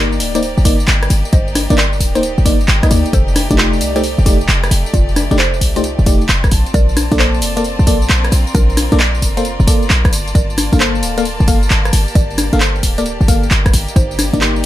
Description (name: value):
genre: UK garage, two-step garage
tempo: 133 BPM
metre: 4/4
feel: swing 66% on 16ths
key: Bb major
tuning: A4 = 442 Hz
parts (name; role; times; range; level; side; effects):
- mallet-like synth pluck; melody; 0.0-14.6 s; D4 to F5; -25 LUFS; right 1 dB; chorus, phaser, ping-pong delay
- bright studio violin section; sustained chords; 0.0-14.7 s; A3 to A5; -26 LUFS; equal; sidechain pumping
- FM electric piano; stabs; 0.0-14.7 s; A3 to F5; -19 LUFS; left 1 dB; chorus, ping-pong delay
- short 808-style bass; bass; 0.0-14.7 s; D1 to D2; -15 LUFS; equal; none
- punchy analog drum machine; drums; 0.1-14.6 s; congas, handclaps, hi-hat, rim click, tambourine; -17 LUFS; left 1 dB; none
- electronic kick drum; drums; 0.7-14.4 s; none; -15 LUFS; equal; none
room: digital ambience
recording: none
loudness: -11 LUFS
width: side -14 dB against mid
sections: 0.0-14.7 A section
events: none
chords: 0.0 Cm9; 3.1 F13; 6.5 Bbmaj7; 10.1 Gm9; 13.7 Cm9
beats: 0.43 0.88 | 1.33 1.78 2.23 2.68 | 3.13 3.58 4.04 4.49 | 4.94 5.39 5.84 6.29 | 6.74 7.19 7.64 8.10 | 8.55 9.00 9.45 9.90 | 10.35 10.80 11.25 11.70 | 12.15 12.61 13.06 13.51 | 13.96 14.41